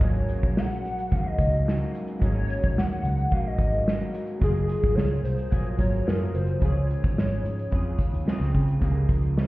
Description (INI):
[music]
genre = indie pop, bedroom pop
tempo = 109 BPM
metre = 4/4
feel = straight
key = Db major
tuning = A4 = 440 Hz
[part]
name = hollow clarinet-like synth lead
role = melody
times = 0.0-9.5 s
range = F3 to Gb5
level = -31 LUFS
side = left 1 dB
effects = ensemble chorus, ping-pong delay
[part]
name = electric guitar through a small old amp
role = accompaniment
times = 0.0-9.5 s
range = Ab2 to Ab4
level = -35 LUFS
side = left 1 dB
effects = analog chorus, vibrato effect
[part]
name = warm analog keys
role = accompaniment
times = 0.0-9.5 s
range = Db3 to Db5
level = -35 LUFS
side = right 4 dB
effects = chorus
[part]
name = vintage muted picked electric bass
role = bass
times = 0.0-9.4 s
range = Gb1 to Db3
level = -26 LUFS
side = equal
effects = none
[part]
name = unplugged drum kit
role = drums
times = 0.0-9.5 s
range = hi-hat, kick drum, snare drum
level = -25 LUFS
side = equal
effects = none
[sound]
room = small room ambience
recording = heard muffled through a wall, stone room reverb, EQ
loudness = -22 LUFS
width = side -18 dB against mid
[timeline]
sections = 0.0-8.8 A section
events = none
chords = 0.0 Ab9sus4; 4.4 Gbmaj9; 6.6 Dbmaj7; 8.8 Db6